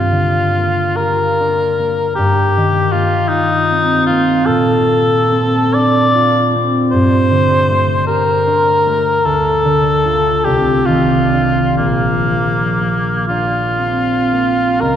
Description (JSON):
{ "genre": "classical, impressionist duo for cor anglais and harp", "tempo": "37-54 BPM (dotted quarters)", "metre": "6/8", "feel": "rubato", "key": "Bb major", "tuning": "A4 = 440 Hz", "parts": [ { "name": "clear cor anglais", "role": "melody", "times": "0.0-15.0 s", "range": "Bb3 to D5", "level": "-14 LUFS", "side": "left 2 dB", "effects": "none" }, { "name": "concert harp", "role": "accompaniment", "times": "0.0-15.0 s", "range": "Bb1 to G4", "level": "-15 LUFS", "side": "right 1 dB", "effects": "none" } ], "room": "wet church reverb, RT60 3.4 s", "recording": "dark, warm production", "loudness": "-12 LUFS", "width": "side -9 dB against mid", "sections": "0.0-14.8 A section", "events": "none", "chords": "0.0 Gm7; 2.2 Eb69/G; 4.5 Bbmaj9; 6.9 Gmadd9; 9.2 Dm; 10.4 Cmadd9; 11.8 Bbadd9" }